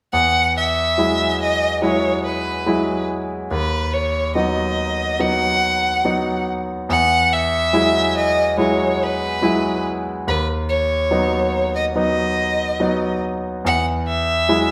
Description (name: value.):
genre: pop ballad.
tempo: 71 BPM.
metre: 4/4.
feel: straight.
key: E major.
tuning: A4 = 440 Hz.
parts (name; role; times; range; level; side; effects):
rich violin; melody; 0.1-14.7 s; B4 to F#5; -22 LUFS; equal; none.
clear concert grand piano; accompaniment; 0.1-14.7 s; D#2 to E4; -22 LUFS; equal; none.
room: wet stone room reverb, RT60 1.3 s.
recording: band playing live in one room.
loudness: -19 LUFS.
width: mono.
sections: 0.1-14.7 A section.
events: none.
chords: 0.1 Eadd9; 3.5 B/D#; 6.9 Eadd9; 10.3 B/D#; 13.7 Eadd9.